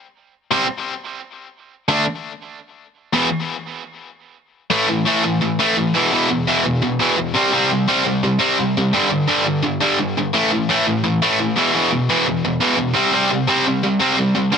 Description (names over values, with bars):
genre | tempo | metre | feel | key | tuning
punk | 171 BPM | 4/4 | straight | unclear | A4 = 441 Hz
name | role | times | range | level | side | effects
distorted electric guitar | solo | 0.5-14.6 s | E2 to D4 | -16 LUFS | equal | overdrive, ping-pong delay
room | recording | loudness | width
light reverb | dense, heavily limited modern master | -16 LUFS | side -6 dB against mid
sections
0.0-4.7 A section; 4.7-14.6 B section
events
half time 0.0-4.7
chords
0.0 C5; 1.9 D5; 3.1 E5; 4.7 A5; 5.9 E5; 7.4 C5; 8.9 G5; 10.3 A5; 11.6 E5; 13.0 C5